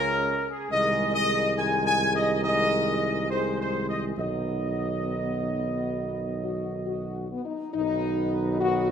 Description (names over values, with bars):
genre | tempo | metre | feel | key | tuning
classical, ceremonial fanfare | 68 BPM | 4/4 | straight | unclear | A4 = 440 Hz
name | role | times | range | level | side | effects
warm trumpet section | melody | 0.0-8.9 s | G#4 to G#5 | -27 LUFS | equal | none
warm French horn section | sustained chords | 0.0-8.9 s | G#3 to G#4 | -30 LUFS | left 3 dB | none
warm trombone section | sustained chords | 0.0-8.9 s | C#3 to G#3 | -35 LUFS | right 2 dB | none
mellow tuba | bass | 0.0-8.9 s | B1 to C#2 | -30 LUFS | right 2 dB | none
room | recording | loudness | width
moderate recital hall reverb, RT60 1.6 s | none | -24 LUFS | side -8 dB against mid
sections
0.0-7.8 A section; 7.8-8.9 B section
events
none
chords
0.0 C#5; 0.7 G#/B#; 4.2 B